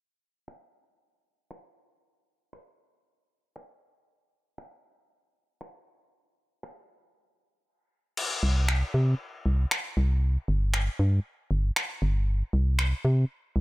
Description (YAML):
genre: dance-pop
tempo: 117 BPM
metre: 4/4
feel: straight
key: unclear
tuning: A4 = 440 Hz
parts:
  - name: gated 80s digital drum machine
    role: drums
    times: 0.5-12.9 s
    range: crash cymbal, finger snaps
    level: -31 LUFS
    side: left 1 dB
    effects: overdrive
  - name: organ-like FM bass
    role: bass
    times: 8.4-13.6 s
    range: G1 to C3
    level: -23 LUFS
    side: equal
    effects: none
room: little or no reverb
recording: low-pass filter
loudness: -24 LUFS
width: side -20 dB against mid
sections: 0.0-8.2 A section; 8.2-13.6 B section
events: filter sweep 0.0-8.2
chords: none